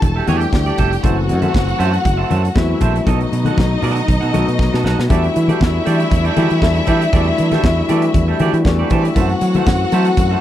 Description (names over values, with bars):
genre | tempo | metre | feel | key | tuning
disco | 118 BPM | 4/4 | straight | E minor | A4 = 439 Hz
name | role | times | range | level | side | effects
clear symphonic string section | second line | 0.0-10.4 s | G3 to A5 | -21 LUFS | left 1 dB | none
clean electric guitar | accompaniment | 0.0-10.4 s | F#4 to F#5 | -24 LUFS | right 10 dB | none
dark concert grand piano | accompaniment | 0.0-10.4 s | D#3 to A4 | -21 LUFS | left 5 dB | none
fingered electric bass | bass | 0.0-10.3 s | E1 to F#3 | -17 LUFS | right 1 dB | none
modern studio drum kit | drums | 0.0-10.3 s | hi-hat, kick drum, snare drum | -18 LUFS | right 1 dB | none
congas | percussion | 0.0-10.3 s | none | -24 LUFS | left 4 dB | none
tambourine | percussion | 9.2-10.3 s | none | -38 LUFS | right 13 dB | none
room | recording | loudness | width
studio reverb | dry, close 1970s-style studio recording | -13 LUFS | side -12 dB against mid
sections
0.0-5.1 A section; 5.1-10.4 B section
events
drum fill 4.6-5.1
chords
0.0 Em11; 1.0 F#m7b5; 3.1 B7; 5.1 Em11; 9.2 F#m7b5